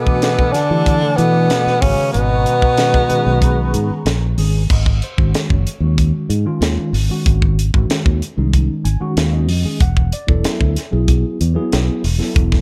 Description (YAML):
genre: electric jazz fusion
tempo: 94 BPM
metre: 4/4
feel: straight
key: G# phrygian from 4.7 s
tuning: A4 = 440 Hz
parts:
  - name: breathy tenor saxophone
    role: melody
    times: 0.0-4.0 s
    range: B3 to D4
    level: -19 LUFS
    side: equal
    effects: slapback echo
  - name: breathy bass clarinet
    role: second line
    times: 0.0-4.0 s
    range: B2 to D3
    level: -24 LUFS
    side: equal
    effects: none
  - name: mellow tine electric piano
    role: accompaniment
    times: 0.0-12.6 s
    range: Eb3 to G#5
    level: -25 LUFS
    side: equal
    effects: phaser
  - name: hollow soft pad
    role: sustained chords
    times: 0.0-4.7 s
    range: A4 to D6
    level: -32 LUFS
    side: equal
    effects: ensemble chorus
  - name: tight funk drum kit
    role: drums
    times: 0.1-12.6 s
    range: crash cymbal, hi-hat, kick drum, snare drum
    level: -20 LUFS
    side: equal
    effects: none
  - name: fingered electric bass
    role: bass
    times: 0.7-12.6 s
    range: E1 to E3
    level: -19 LUFS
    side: equal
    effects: none
room: light reverb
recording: dark, warm production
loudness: -16 LUFS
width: mono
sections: 0.0-4.7 A section; 4.7-12.6 B section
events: tine electric piano fill 8.5-9.8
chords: 0.0 Em11; 1.8 Abm11; 4.7 G#7sus4; 9.8 E9sus4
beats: 0.22 0.86 1.50 | 2.14 2.77 3.41 4.05 | 4.69 5.33 5.97 6.61 | 7.25 7.89 8.53 9.17 | 9.80 10.44 11.08 11.72 | 12.36